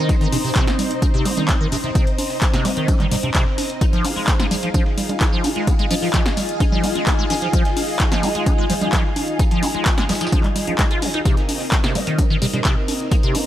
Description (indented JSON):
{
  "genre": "acid house",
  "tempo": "129 BPM",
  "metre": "4/4",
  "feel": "straight",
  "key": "unclear",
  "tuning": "A4 = 440 Hz",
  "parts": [
    { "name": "string machine, full ensemble", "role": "sustained chords", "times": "0.0-13.5 s", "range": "C4 to F5", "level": "-28 LUFS", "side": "equal", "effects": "phaser, ensemble chorus, sidechain pumping" },
    { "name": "liquid acid bass", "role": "riff", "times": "0.0-13.4 s", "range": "C3 to F4", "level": "-24 LUFS", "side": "equal", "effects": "phaser, tube saturation, ensemble chorus, cassette tape, sidechain pumping, tape echo" },
    { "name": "granular cloud pad", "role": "texture", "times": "0.0-13.5 s", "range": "Eb4 to Bb5", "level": "-27 LUFS", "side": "left 1 dB", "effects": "built-in reverb, sidechain pumping" },
    { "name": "dusty soul sampler-style drum kit", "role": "drums", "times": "0.1-13.5 s", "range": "hi-hat, snare drum, tambourine", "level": "-34 LUFS", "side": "left 1 dB", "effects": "none" },
    { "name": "electronic kick drum", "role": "drums", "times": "0.1-13.2 s", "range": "none", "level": "-18 LUFS", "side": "equal", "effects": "overdrive" },
    { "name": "punchy analog drum machine", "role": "drums", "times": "0.1-13.4 s", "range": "congas, handclaps, hi-hat, snare drum", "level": "-23 LUFS", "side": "right 1 dB", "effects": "overdrive" }
  ],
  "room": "light reverb, digital ambience",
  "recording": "none",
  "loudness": "-16 LUFS",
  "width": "side -12 dB against mid",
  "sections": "0.0-13.5 A section",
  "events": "none",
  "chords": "0.0 Cm7; 3.8 Fm7; 11.3 Cm7"
}